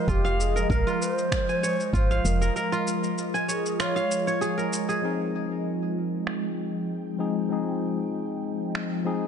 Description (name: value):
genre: organic downtempo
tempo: 97 BPM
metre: 4/4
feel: swing 53% on 16ths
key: F minor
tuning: A4 = 440 Hz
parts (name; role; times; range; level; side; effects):
- breathy mellow low ney; melody; 0.0-4.4 s; G4 to Db5; -30 LUFS; right 1 dB; ping-pong delay
- ethereal airy pad; sustained chords; 0.0-9.3 s; F3 to G5; -30 LUFS; equal; ensemble chorus, built-in reverb, phaser, sidechain pumping
- kora; arpeggios; 0.0-6.3 s; Eb4 to Ab5; -29 LUFS; right 1 dB; ping-pong delay
- woody FM bass; bass; 0.1-2.5 s; F1 to Bb1; -24 LUFS; equal; sidechain pumping
- electronic kick drum; drums; 0.1-2.1 s; none; -28 LUFS; equal; none
- electronic shaker and finger snaps; drums; 0.1-8.9 s; none; -34 LUFS; right 1 dB; low-pass filter on perc, low-pass filter on snare
- tine electric piano; accompaniment; 5.0-9.3 s; F3 to Ab4; -29 LUFS; left 3 dB; sidechain pumping, ping-pong delay
room: light reverb, digital ambience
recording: nothing above 10.6 kHz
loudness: -24 LUFS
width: side -7 dB against mid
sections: 0.0-5.0 A section; 5.0-9.3 B section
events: break 2.6-5.0; filter sweep on drum 5.0-9.3; filter sweep on ambient pad 5.0-9.3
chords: 0.1 Db6/F; 5.0 Fm7